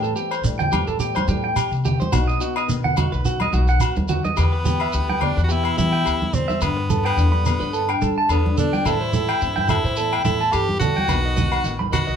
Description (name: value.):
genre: highlife guitar band.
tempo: 107 BPM.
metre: 4/4.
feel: swing 55% on 16ths.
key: E minor.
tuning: A4 = 440 Hz.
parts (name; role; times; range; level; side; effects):
flamenco guitar; accompaniment; 0.0-12.2 s; E2 to G4; -30 LUFS; left 7 dB; none.
clean electric guitar; arpeggios; 0.0-12.2 s; F#4 to B5; -24 LUFS; right 2 dB; none.
upright bass; bass; 0.0-12.2 s; A1 to G3; -23 LUFS; equal; none.
shekere; percussion; 0.0-12.1 s; none; -27 LUFS; right 4 dB; none.
agogo bells; percussion; 0.3-12.1 s; none; -30 LUFS; left 9 dB; none.
congas; percussion; 0.6-12.1 s; none; -25 LUFS; right 3 dB; none.
edgy tenor saxophone; melody; 4.4-12.2 s; B3 to G4; -25 LUFS; equal; none.
room: wet studio reverb, RT60 0.6 s.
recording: band playing live in one room.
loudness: -18 LUFS.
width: side -8 dB against mid.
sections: 0.0-4.4 A section; 4.4-12.2 B section.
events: none.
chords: 0.0 Am7; 2.1 B; 4.4 Em; 6.6 Gadd9; 8.9 Am7; 11.1 B.